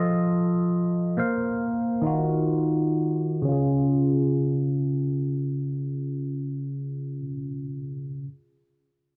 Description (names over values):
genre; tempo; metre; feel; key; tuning
afrobeats; free time; none; none; Db major; A4 = 440 Hz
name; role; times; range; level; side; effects
bell-like tine electric piano; accompaniment; 0.0-8.3 s; Db3 to F5; -26 LUFS; equal; phaser, low-pass filter
room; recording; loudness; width
light reverb; dark, warm production; -26 LUFS; mono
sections
0.0-3.5 A section; 3.5-5.8 B section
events
filter sweep on tine electric piano 0.0-3.5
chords
0.0 F7; 1.2 Bbsus2; 2.0 Ebmadd9; 3.5 Db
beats
free time